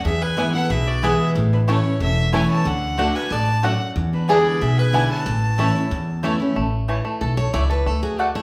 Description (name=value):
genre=bluegrass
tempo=184 BPM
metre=4/4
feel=straight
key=A major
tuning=A4 = 440 Hz
part: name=clear fiddle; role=melody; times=0.0-6.2 s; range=B4 to A5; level=-29 LUFS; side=equal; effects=none
part: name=lap resonator guitar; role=second line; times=0.0-6.2 s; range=D4 to D5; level=-27 LUFS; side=equal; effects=none
part: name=picked steel-string acoustic guitar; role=accompaniment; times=0.0-8.4 s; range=E2 to D5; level=-25 LUFS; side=equal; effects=none
part: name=upright bass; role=bass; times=0.0-8.3 s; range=E1 to E2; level=-25 LUFS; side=equal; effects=none
part: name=bluegrass banjo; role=melody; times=0.4-8.4 s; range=E3 to A4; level=-32 LUFS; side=equal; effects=none
part: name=mandolin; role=stabs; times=0.4-8.3 s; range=A3 to A5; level=-29 LUFS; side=equal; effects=none
room=wet large studio reverb, RT60 1.1 s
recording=band playing live in one room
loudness=-20 LUFS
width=mono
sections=0.0-6.6 A section; 6.6-8.4 B section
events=steel-string acoustic guitar solo 6.6-8.4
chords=0.1 E; 1.4 A; 2.7 D; 4.0 E7; 5.3 A; 7.9 D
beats=| 0.05 0.38 0.70 1.03 | 1.36 1.68 2.01 2.33 | 2.66 2.98 3.31 3.63 | 3.96 4.29 4.61 4.94 | 5.26 5.59 5.91 6.24 | 6.56 6.89 7.21 7.54 | 7.87 8.19